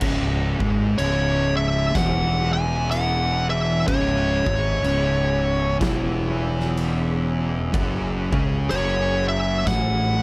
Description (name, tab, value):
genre	stoner and doom metal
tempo	62 BPM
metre	4/4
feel	swing 61% on 8ths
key	C# minor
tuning	A4 = 440 Hz
part	analog drone	sustained chords	1.4-10.2 s	F#3 to E5	-38 LUFS	equal	none
part	thick fuzz guitar	riff	0.0-10.2 s	C#2 to C#4	-29 LUFS	equal	distortion
part	thick fuzz guitar	riff	0.0-10.2 s	C#2 to C#4	-30 LUFS	equal	distortion
part	fuzz fingered electric bass	bass	0.0-10.2 s	C#1 to C#2	-28 LUFS	equal	overdrive
part	oversized low-tuned drum kit	drums	0.0-9.9 s	crash cymbal, kick drum, snare drum	-31 LUFS	equal	none
part	fuzz lead guitar	melody	1.0-10.2 s	C#5 to G#5	-26 LUFS	equal	distortion, tape echo
room	light reverb, studio ambience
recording	dark, warm production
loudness	-22 LUFS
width	mono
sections	0.0-10.2 A section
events	none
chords	0.0 C#m; 7.7 F#5